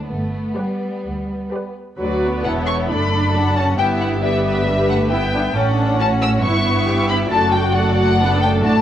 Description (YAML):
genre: quick classical-period movement for string orchestra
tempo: 135 BPM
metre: 4/4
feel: rubato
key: D major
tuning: A4 = 442 Hz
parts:
  - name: rich studio violin section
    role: second line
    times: 0.0-8.8 s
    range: B3 to F#5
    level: -25 LUFS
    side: left 2 dB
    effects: none
  - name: dark studio double bass section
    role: bass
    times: 0.1-8.8 s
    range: E1 to D2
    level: -22 LUFS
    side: right 2 dB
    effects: none
  - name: warm studio cello section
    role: bass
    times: 0.1-8.8 s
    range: D2 to A3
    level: -24 LUFS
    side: right 1 dB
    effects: none
  - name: warm studio violin section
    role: melody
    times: 0.6-8.8 s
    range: D5 to E6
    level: -21 LUFS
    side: left 3 dB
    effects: none
  - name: warm studio viola section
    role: accompaniment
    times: 0.6-8.8 s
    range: F#3 to B4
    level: -20 LUFS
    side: equal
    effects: none
room: moderate recital hall reverb, RT60 1.4 s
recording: worn, warbling old tape, cassette tape, warbly pitch drift, nothing above 10.8 kHz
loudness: -16 LUFS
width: side -10 dB against mid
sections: 0.0-2.0 A section; 2.0-8.8 B section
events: none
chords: 0.1 G; 2.0 D; 2.9 D/F#; 3.8 Em/G; 5.6 A; 6.4 Em6/G; 7.3 D/F#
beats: | 0.09 0.57 1.05 1.52 | 2.00 2.45 2.90 3.35 | 3.79 4.23 4.67 5.11 | 5.56 6.00 6.44 6.88 | 7.32 7.75 8.20 8.63